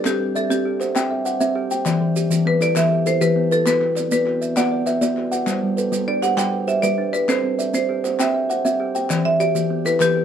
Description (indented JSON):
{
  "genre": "southern african traditional, mbira-style interlocking cycle",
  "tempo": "133 BPM (dotted quarters)",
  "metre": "12/8",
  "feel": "straight",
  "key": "unclear",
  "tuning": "A4 = 440 Hz",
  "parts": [
    { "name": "marimba with medium hard mallets", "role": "melody", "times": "0.0-10.2 s", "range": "G4 to G5", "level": "-21 LUFS", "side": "equal", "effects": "none" },
    { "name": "kalimba", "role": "arpeggios", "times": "0.0-10.2 s", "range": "E3 to G5", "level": "-21 LUFS", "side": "left 2 dB", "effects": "none" },
    { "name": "kalimba", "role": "arpeggios", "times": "0.0-10.2 s", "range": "E3 to F#5", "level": "-25 LUFS", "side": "right 4 dB", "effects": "none" },
    { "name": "group handclap", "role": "percussion", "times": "0.0-10.1 s", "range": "none", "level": "-32 LUFS", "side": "left 5 dB", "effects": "none" },
    { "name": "maracas", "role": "percussion", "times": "0.1-10.1 s", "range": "none", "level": "-33 LUFS", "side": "right 7 dB", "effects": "none" }
  ],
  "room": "moderate studio reverb, RT60 0.6 s",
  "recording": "dark, warm production",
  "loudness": "-17 LUFS",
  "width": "side -8 dB against mid",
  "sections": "0.0-10.2 A section",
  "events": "none",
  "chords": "0.1 C; 1.9 Em; 3.7 Bm; 5.5 G; 7.3 C; 9.1 Em"
}